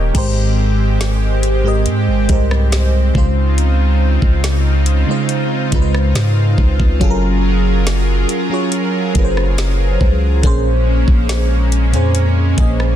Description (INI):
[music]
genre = contemporary R&B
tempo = 70 BPM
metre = 4/4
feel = straight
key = Ab major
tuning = A4 = 440 Hz
[part]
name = FM electric piano with soft pad layer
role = accompaniment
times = 0.0-13.0 s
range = Ab2 to G5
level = -18 LUFS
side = right 1 dB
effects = chorus, phaser
[part]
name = lush unison pad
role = sustained chords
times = 0.0-13.0 s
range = Db3 to Bb4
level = -23 LUFS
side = equal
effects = chorus
[part]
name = long sustained 808-style bass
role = bass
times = 0.0-13.0 s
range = Eb1 to Ab2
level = -15 LUFS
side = equal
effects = none
[part]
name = smooth R&B drum kit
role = drums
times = 0.1-13.0 s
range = crash cymbal, hi-hat, kick drum, rim click, snare drum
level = -18 LUFS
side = equal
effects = vintage 12-bit sampler grit
[sound]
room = digital ambience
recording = dense, heavily limited modern master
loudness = -12 LUFS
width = side -11 dB against mid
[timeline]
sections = 0.1-13.0 A section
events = none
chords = 0.1 Abmaj9; 3.1 Dbmaj9; 7.0 Gbmaj9; 10.4 Bbm9